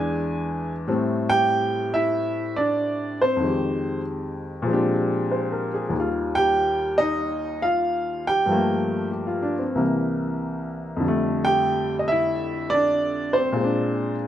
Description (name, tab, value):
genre	solo jazz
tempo	94 BPM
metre	4/4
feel	swing 67% on 8ths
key	unclear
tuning	A4 = 439 Hz
part	clear upright piano	solo	0.0-14.3 s	C2 to Ab5	-21 LUFS	equal	none
room	wet large studio reverb, RT60 1.3 s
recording	dark, warm production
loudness	-21 LUFS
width	side -11 dB against mid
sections	0.9-14.3 A section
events	none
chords	0.0 E7; 0.9 Am7; 3.4 Fm9; 4.7 Bb13; 5.9 Ebadd9; 8.5 Gm9; 9.7 C7; 11.0 F69; 13.6 Bb9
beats	0.24 | 0.87 1.50 2.13 2.77 | 3.40 4.04 4.67 5.30 | 5.94 6.57 7.21 7.84 | 8.48 9.11 9.75 10.38 | 11.02 11.65 12.29 12.93 | 13.56 14.20